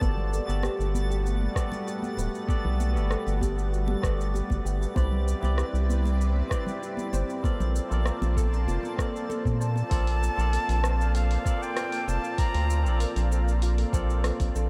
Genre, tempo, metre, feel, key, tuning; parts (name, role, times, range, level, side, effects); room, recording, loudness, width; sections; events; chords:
sunset chillout; 97 BPM; 4/4; straight; A4 = 440 Hz
barky tine electric piano; accompaniment; 0.0-14.7 s; B3 to D5; -37 LUFS; equal; overdrive, delay
lush unison pad; sustained chords; 0.0-14.7 s; G3 to A5; -38 LUFS; equal; chorus, phaser, vintage 12-bit sampler grit
soft round pluck; arpeggios; 0.0-14.7 s; E4 to C5; -42 LUFS; equal
round analog bass; bass; 0.0-14.7 s; D1 to Bb2; -28 LUFS; equal
deep house drum kit; drums; 0.0-14.7 s; cabasa, hi-hat, rim click; -41 LUFS; equal
electronic kick drum; drums; 0.0-14.5 s; -30 LUFS; equal
congas; percussion; 0.0-9.9 s; -41 LUFS; equal
twinkling granular texture; texture; 0.0-9.9 s; A6; -49 LUFS; equal; built-in reverb
bright reedy concert flute; melody; 9.6-13.0 s; F5 to Bb5; -36 LUFS; equal; delay
moderate huge ambient reverb, RT60 8.4 s; dreamy mix soaked in reverb; -27 LUFS; mono
0.0-9.9 A section; 9.9-14.7 B section
0.0 Gmaj9; 5.0 Cmaj9; 7.4 Bbmaj9